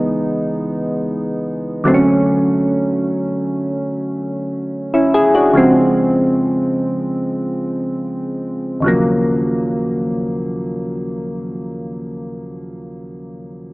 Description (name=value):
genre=R&B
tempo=free time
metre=none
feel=none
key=Eb minor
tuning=A4 = 439 Hz
part: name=soft electric-piano-like synth keys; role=accompaniment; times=0.0-13.7 s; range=Db2 to G#4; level=-16 LUFS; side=equal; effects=chorus
room=wet lush hall reverb, RT60 2.6 s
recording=small speaker sound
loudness=-15 LUFS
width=side -21 dB against mid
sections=0.0-8.8 A section; 8.8-12.1 B section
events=none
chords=0.0 Dbm9; 1.9 Dmaj9#11; 5.6 Dbmaj7; 8.8 Ebm9